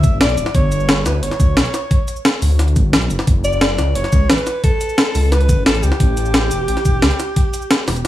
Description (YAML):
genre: liquid drum and bass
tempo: 176 BPM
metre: 4/4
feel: straight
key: G lydian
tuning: A4 = 439 Hz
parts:
  - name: warm alto saxophone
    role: melody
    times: 0.0-8.1 s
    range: G4 to E5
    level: -22 LUFS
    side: equal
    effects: digital delay
  - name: swelling detuned saw bass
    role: bass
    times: 0.0-8.0 s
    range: D1 to D2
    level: -17 LUFS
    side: equal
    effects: none
  - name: breakbeat sampler-style drum kit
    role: drums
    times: 0.0-8.1 s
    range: cabasa, hi-hat, snare drum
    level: -18 LUFS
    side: equal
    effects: none
  - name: electronic kick drum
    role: drums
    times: 0.0-7.4 s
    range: none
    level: -15 LUFS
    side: equal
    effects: overdrive
room: little or no reverb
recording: studio reverb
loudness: -13 LUFS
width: side -14 dB against mid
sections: 0.0-8.1 A section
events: none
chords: 0.0 G; 3.1 F#m; 6.0 A7(no3)